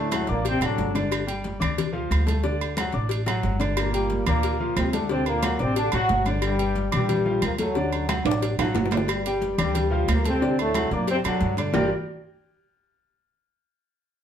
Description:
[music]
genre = latin, salsa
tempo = 181 BPM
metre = 4/4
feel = straight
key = G minor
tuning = A4 = 440 Hz
[part]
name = mellow trombone section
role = melody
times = 0.0-0.9, 3.8-11.9 s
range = F#2 to G4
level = -26 LUFS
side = left 1 dB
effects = plate reverb
[part]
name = clear concert grand piano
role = accompaniment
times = 0.0-11.9 s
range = D3 to D6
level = -28 LUFS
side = left 1 dB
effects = none
[part]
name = upright bass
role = bass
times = 0.0-11.9 s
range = G1 to G2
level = -27 LUFS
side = right 1 dB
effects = none
[part]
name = agogo bells and timbales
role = percussion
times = 0.1-11.8 s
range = none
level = -30 LUFS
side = right 6 dB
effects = none
[part]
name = claves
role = percussion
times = 0.1-11.8 s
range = none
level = -38 LUFS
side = left 2 dB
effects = none
[part]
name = congas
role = percussion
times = 0.1-11.8 s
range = none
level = -32 LUFS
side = left 2 dB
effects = none
[part]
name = cowbell and bongos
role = percussion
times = 0.1-11.8 s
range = none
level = -34 LUFS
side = left 7 dB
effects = none
[sound]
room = wet studio reverb, RT60 0.7 s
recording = heard from further back in the room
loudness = -21 LUFS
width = side -9 dB against mid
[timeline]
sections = 0.0-9.1 A section; 9.1-11.7 B section; 11.7-13.1 C section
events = drum fill 8.1-9.1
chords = 0.0 D7; 1.1 G5; 2.4 D; 3.8 Gm7; 5.1 D7; 6.4 Gm7; 7.8 D; 9.1 Gm7; 10.4 D7; 11.7 Gm7

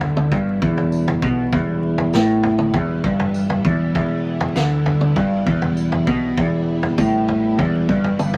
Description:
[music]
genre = psychedelic rock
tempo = 99 BPM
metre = 4/4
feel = straight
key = E minor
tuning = A4 = 441 Hz
[part]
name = string machine, violins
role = sustained chords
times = 0.0-8.4 s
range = E3 to E4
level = -32 LUFS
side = equal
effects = ensemble chorus
[part]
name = electric guitar through a small old amp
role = riff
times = 0.0-8.4 s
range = E2 to D3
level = -20 LUFS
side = equal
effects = rotary speaker
[part]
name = growling fingered electric bass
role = bass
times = 0.0-8.4 s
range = E1 to D2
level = -33 LUFS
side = equal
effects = overdrive
[part]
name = vintage drum kit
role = drums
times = 0.0-8.4 s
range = kick drum, snare drum, toms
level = -27 LUFS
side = equal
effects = none
[part]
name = tambourine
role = percussion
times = 0.9-8.3 s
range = none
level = -45 LUFS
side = equal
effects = none
[sound]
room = moderate studio ambience, RT60 0.5 s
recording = vinyl crackle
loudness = -19 LUFS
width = mono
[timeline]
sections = 0.0-8.4 A section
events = none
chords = 0.0 Em

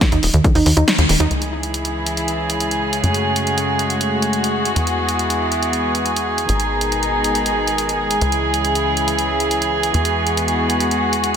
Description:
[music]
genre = uplifting trance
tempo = 139 BPM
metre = 4/4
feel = straight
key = C# minor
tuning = A4 = 439 Hz
[part]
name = wide unison pluck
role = arpeggios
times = 0.0-1.2 s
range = D#3 to D#4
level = -20 LUFS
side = right 2 dB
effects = sidechain pumping, ping-pong delay
[part]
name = electronic kick drum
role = drums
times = 0.0-0.5 s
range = none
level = -16 LUFS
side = equal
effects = none
[part]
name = punchy analog drum machine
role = drums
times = 0.0-11.4 s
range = hi-hat, snare drum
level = -22 LUFS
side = equal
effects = sidechain pumping on hats
[part]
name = tight sequencer bass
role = bass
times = 0.1-11.4 s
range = D#1 to F#2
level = -23 LUFS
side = equal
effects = sidechain pumping
[part]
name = dark chamber string section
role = sustained chords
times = 1.3-11.4 s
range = B2 to G#4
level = -18 LUFS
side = equal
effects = sidechain pumping
[sound]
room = moderate lush hall reverb, RT60 2.2 s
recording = none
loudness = -16 LUFS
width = side -8 dB against mid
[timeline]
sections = 0.0-1.3 A section; 1.3-11.4 B section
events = kick drops out 0.9-1.3; band accent 0.9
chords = 0.0 N.C.; 1.3 C#m; 3.0 F#madd9; 4.8 Eadd9; 6.5 G#m; 8.2 C#m; 9.9 Eadd9

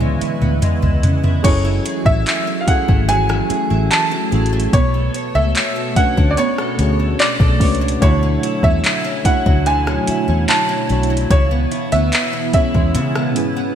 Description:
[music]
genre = contemporary R&B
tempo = 73 BPM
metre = 4/4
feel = straight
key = F# minor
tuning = A4 = 437 Hz
[part]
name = mellow tine electric piano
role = accompaniment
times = 0.0-13.8 s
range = D3 to E5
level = -23 LUFS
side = right 2 dB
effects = medium stereo tremolo
[part]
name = hollow soft pad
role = sustained chords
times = 0.0-13.8 s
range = B2 to E6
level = -26 LUFS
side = left 1 dB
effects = ensemble chorus, sidechain pumping
[part]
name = picked acoustic archtop guitar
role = arpeggios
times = 0.0-13.8 s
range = C#3 to C#5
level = -24 LUFS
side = right 1 dB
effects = analog chorus
[part]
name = vintage muted fingered electric bass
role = bass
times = 0.0-13.7 s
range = F#1 to C#3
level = -18 LUFS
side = left 1 dB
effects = none
[part]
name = smooth R&B drum kit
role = drums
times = 0.0-13.6 s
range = crash cymbal, handclaps, hi-hat, kick drum, rim click, toms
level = -18 LUFS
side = equal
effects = vintage 12-bit sampler grit, gated reverb
[part]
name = clear grand piano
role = melody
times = 1.4-13.7 s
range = C#5 to A5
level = -21 LUFS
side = right 1 dB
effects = ping-pong delay
[sound]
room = light reverb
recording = bright 1980s-style digital production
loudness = -14 LUFS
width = side -9 dB against mid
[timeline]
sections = 0.0-1.4 A section; 1.4-13.8 B section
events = drum fill 0.0-1.4; tine electric piano solo 0.0-1.4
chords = 0.0 C#m7; 1.4 F#m9; 4.7 Bm9; 8.0 Dmaj9; 11.3 C#m7

